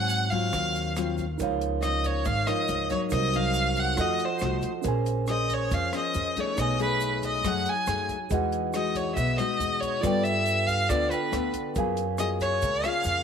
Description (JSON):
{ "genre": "bossa nova", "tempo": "139 BPM", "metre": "4/4", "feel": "straight", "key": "Db major", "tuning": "A4 = 441 Hz", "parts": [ { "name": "clear violin", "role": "melody", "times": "0.0-13.2 s", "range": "Cb5 to Ab5", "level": "-28 LUFS", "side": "equal", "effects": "tape echo" }, { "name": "nylon-string guitar", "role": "accompaniment", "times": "0.0-13.2 s", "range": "Ab2 to C5", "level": "-31 LUFS", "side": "left 10 dB", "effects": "none" }, { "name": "upright bass", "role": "bass", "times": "0.0-13.2 s", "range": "Ab1 to Ab2", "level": "-30 LUFS", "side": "right 1 dB", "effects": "none" }, { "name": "compact cocktail drum kit", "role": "drums", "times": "0.1-13.2 s", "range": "hi-hat, kick drum, rim click", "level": "-37 LUFS", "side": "equal", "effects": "none" }, { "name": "egg shaker", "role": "percussion", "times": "0.1-13.2 s", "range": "none", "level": "-45 LUFS", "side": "right 18 dB", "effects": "none" }, { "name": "mellow tine electric piano", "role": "accompaniment", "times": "1.4-13.2 s", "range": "Db4 to Ab5", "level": "-32 LUFS", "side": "right 12 dB", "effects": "none" } ], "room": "light reverb", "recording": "1960s-style stereo with parts hard left and right", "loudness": "-24 LUFS", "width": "side -7 dB against mid", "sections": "0.0-1.4 A section; 1.4-13.2 B section", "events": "none", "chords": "0.0 Ab6; 1.4 Db69; 3.1 Cm7b5; 4.0 F7b9; 4.9 Bbm9; 6.6 Cb13; 8.3 Emaj9; 10.0 G9; 11.8 Gbmaj9", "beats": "0.10 0.53 0.96 | 1.39 1.83 2.26 2.69 | 3.12 3.56 3.99 4.42 | 4.85 5.29 5.72 6.15 | 6.58 7.01 7.45 7.88 | 8.31 8.74 9.17 9.61 | 10.04 10.47 10.90 11.33 | 11.76 12.20 12.63 13.06" }